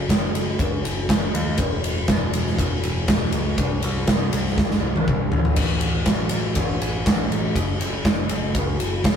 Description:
quiet-loud alternative rock; 121 BPM; 4/4; straight; A4 = 440 Hz
growling picked electric bass; bass; 0.0-9.2 s; E1 to D#2; -26 LUFS; left 1 dB; overdrive
big rock drum kit; drums; 0.1-9.2 s; crash cymbal, kick drum, ride cymbal, snare drum, toms; -20 LUFS; equal
little or no reverb; rough rehearsal-room recording; -19 LUFS; side -8 dB against mid
0.0-9.2 A section
drum fill 4.6-5.6

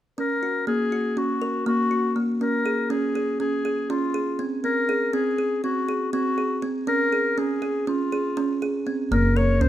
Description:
contemporary instrumental, contemporary; 242 BPM (eighths); 9/8; straight; Gb lydian; A4 = 440 Hz
warm clarinet; melody; 0.2-9.7 s; F4 to Db5; -25 LUFS; left 3 dB
kalimba; arpeggios; 0.2-9.7 s; Bb3 to Bb4; -24 LUFS; right 2 dB
upright bass; bass; 9.1-9.7 s; Gb1 to Db2; -20 LUFS; equal
light reverb; close, detailed microphones; -22 LUFS; side -12 dB against mid
0.2-9.1 A section
0.2 Gb; 2.4 Db; 4.6 Ab7/C; 6.9 Db; 9.1 Gb

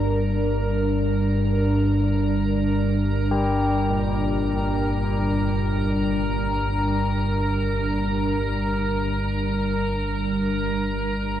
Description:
dark ambient drone; free time; G minor; A4 = 441 Hz
deep dark ambient pad; sustained chords; 0.0-11.4 s; G3 to D5; -25 LUFS; right 1 dB; chorus, built-in reverb
deep rumbling drone; drone; 0.0-11.4 s; G1 to G2; -24 LUFS; equal; built-in reverb
icy glass pad; texture; 0.0-11.4 s; Bb4 to Bb5; -29 LUFS; right 1 dB; chorus, built-in reverb, shimmer reverb
carillon bells; arpeggios; 3.3-10.8 s; Bb2 to G4; -31 LUFS; left 2 dB; ping-pong delay, shimmer reverb
wet huge ambient reverb, RT60 7.5 s; worn, warbling old tape, cassette tape, warbly pitch drift; -21 LUFS; side -11 dB against mid
0.0-11.4 A section
0.0 Gm

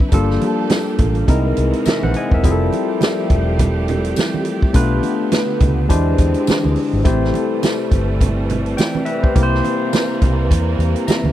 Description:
lush 1970s-style soul; 104 BPM; 4/4; swing 58% on 16ths; C major; A4 = 436 Hz
barky tine electric piano; accompaniment; 0.0-11.3 s; G3 to Bb5; -19 LUFS; left 2 dB; overdrive, phaser
warm studio string section; sustained chords; 0.0-11.3 s; C3 to A4; -26 LUFS; right 3 dB
vintage drum kit; drums; 0.0-11.2 s; hi-hat, kick drum, snare drum; -17 LUFS; equal
vintage muted fingered electric bass; bass; 0.1-11.3 s; E1 to E2; -18 LUFS; equal
congas; percussion; 0.1-11.3 s; -25 LUFS; right 5 dB
tambourine; percussion; 0.7-11.2 s; -35 LUFS; left 16 dB
vibraphone with medium hard mallets; texture; 1.9-2.7, 7.1-8.1 s; A4 to Bb4; -30 LUFS; equal
small room ambience; dry, close 1970s-style studio recording; -14 LUFS; side -12 dB against mid
0.0-11.3 A section
0.1 Gm9; 1.3 C7alt; 2.4 Fmaj9; 4.7 Bm7b5; 5.9 E7alt; 7.1 Am7; 9.4 C7

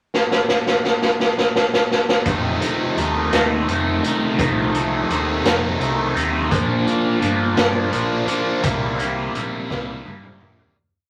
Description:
psychedelic rock; 56 BPM (dotted quarters); 6/8; straight; F mixolydian; A4 = 437 Hz
raw garage drum kit; drums; 0.1-10.8 s; hi-hat, kick drum, snare drum, toms; -22 LUFS; equal
overdriven electric guitar; riff; 2.3-10.8 s; F2 to E4; -22 LUFS; equal; phaser
growling picked electric bass; bass; 2.3-10.7 s; F1 to G2; -29 LUFS; equal; overdrive
moderate studio reverb, RT60 0.6 s; vinyl crackle; -20 LUFS; mono
0.1-2.3 pickup bar; 2.3-10.8 verse
drum fill 0.1-2.3, 9.7-10.8; fade-out 8.6-10.8
0.1 N.C.; 2.3 F5; 6.5 Bb; 8.6 C7

